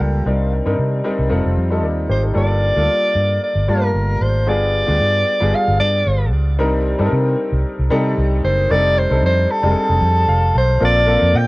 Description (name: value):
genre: polished 1980s jazz-funk pop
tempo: 114 BPM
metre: 4/4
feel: swing 54% on 16ths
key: unclear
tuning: A4 = 444 Hz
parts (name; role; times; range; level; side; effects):
- warm soprano saxophone; melody; 0.0-11.5 s; A4 to G5; -18 LUFS; equal; cassette tape, plate reverb
- clear baby grand piano; accompaniment; 0.0-11.5 s; G3 to A5; -20 LUFS; left 1 dB; analog chorus, cassette tape, plate reverb
- vintage muted fingered electric bass; bass; 0.0-11.5 s; F1 to C3; -17 LUFS; equal; none
room: light reverb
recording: home recording on cassette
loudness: -14 LUFS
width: side -21 dB against mid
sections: 0.0-2.4 A section; 2.4-10.8 B section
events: grand piano fill 10.0-10.8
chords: 0.3 Cm7; 1.3 F7; 2.4 Gm9; 4.5 G7b9; 6.6 Cm9; 8.7 F13; 10.8 Bbmaj7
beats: | 0.26 0.78 1.31 1.84 | 2.37 2.90 3.42 3.95 | 4.48 5.01 5.54 6.07 | 6.59 7.12 7.65 8.18 | 8.71 9.23 9.76 10.29 | 10.82 11.34